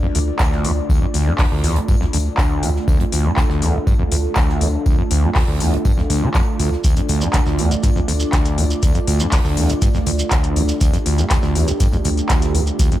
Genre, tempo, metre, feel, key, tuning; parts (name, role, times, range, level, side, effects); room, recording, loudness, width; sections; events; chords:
acid house; 121 BPM; 4/4; straight; D minor; A4 = 440 Hz
dark analog pad; sustained chords; 0.0-13.0 s; A3 to D5; -24 LUFS; right 2 dB; chorus, sidechain pumping
overdriven acid bass; riff; 0.0-13.0 s; D1 to D3; -20 LUFS; equal; distortion, wide subtle chorus, ping-pong delay
round analog bass; bass; 0.0-12.7 s; D2; -20 LUFS; equal; tube saturation, sidechain pumping
electro analog drum machine; drums; 0.1-13.0 s; handclaps, hi-hat; -24 LUFS; left 1 dB
natural country drum kit; drums; 0.1-12.9 s; hi-hat, snare drum, tambourine; -36 LUFS; left 1 dB; high-pass filter on hats, high-pass filter on snare, high-pass filter on perc, high-pass filter on room
electronic kick drum; drums; 0.4-12.9 s; -18 LUFS; equal
shekere; percussion; 6.8-13.0 s; -30 LUFS; right 3 dB
light reverb, small room ambience; -15 LUFS; side -14 dB against mid
0.0-13.0 A section
0.0 Dm